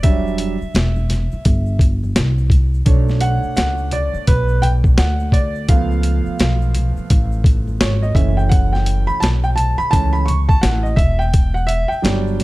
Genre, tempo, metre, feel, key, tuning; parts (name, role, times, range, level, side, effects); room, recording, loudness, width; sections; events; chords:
hip hop, jazz-hop; 85 BPM; 4/4; swing 63% on 16ths; E dorian; A4 = 438 Hz
warm concert grand piano; accompaniment; 0.0-12.4 s; E3 to C#6; -21 LUFS; right 2 dB
upright bass; bass; 0.0-12.4 s; E1 to D2; -18 LUFS; equal
boom bap sampler-style drum kit; drums; 0.0-12.4 s; hi-hat, kick drum, snare drum; -16 LUFS; equal
tube shaker and congas; percussion; 0.0-12.4 s; -31 LUFS; left 2 dB
studio reverb; dark, warm production; -14 LUFS; side -19 dB against mid
0.0-12.4 A section
grand piano solo 0.0-12.4
0.0 Em9; 2.9 Bm7; 5.7 C#7b13; 8.2 F#m7; 11.0 Em9